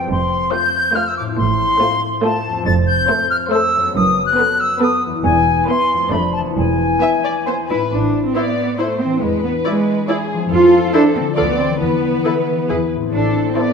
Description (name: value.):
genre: cinematic, playful, whimsical film cue.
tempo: 138 BPM.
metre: 3/4.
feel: straight.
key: A minor.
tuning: A4 = 440 Hz.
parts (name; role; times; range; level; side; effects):
bright small flute group; second line; 0.0-7.7 s; G#5 to A6; -17 LUFS; left 2 dB; none.
concert harp; arpeggios; 0.0-13.7 s; E2 to D5; -22 LUFS; left 7 dB; none.
muted studio cello section; bass; 0.1-13.7 s; E2 to F4; -18 LUFS; right 3 dB; none.
muted studio double bass section; bass; 0.1-13.5 s; E1 to F2; -23 LUFS; right 5 dB; none.
muted studio violin section; melody; 0.5-13.7 s; B4 to E5; -26 LUFS; left 5 dB; none.
muted studio violin section; second line; 0.5-13.7 s; D4 to D5; -24 LUFS; left 2 dB; none.
muted studio viola section; accompaniment; 0.5-13.7 s; A3 to A4; -23 LUFS; right 2 dB; none.
room: moderate scoring stage reverb, RT60 1.6 s.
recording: minimal, uncompressed stereo recording.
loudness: -14 LUFS.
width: side -6 dB against mid.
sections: 0.0-7.9 A section; 7.9-13.7 B section.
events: none.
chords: 0.1 F; 1.4 F/A; 2.7 F; 3.9 B5/F#; 5.2 E; 6.1 Dm/F; 6.6 E; 7.9 Am; 9.2 E7; 10.5 Fmaj7; 11.4 Dm; 11.8 Esus4; 12.7 E; 13.1 Am.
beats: | 0.10 0.52 0.95 | 1.38 1.81 2.23 | 2.66 3.09 3.52 | 3.95 4.38 4.81 | 5.25 5.68 6.12 | 6.57 7.02 7.47 | 7.92 8.36 8.79 | 9.22 9.65 10.09 | 10.51 10.94 11.37 | 11.81 12.25 12.69 | 13.13 13.57.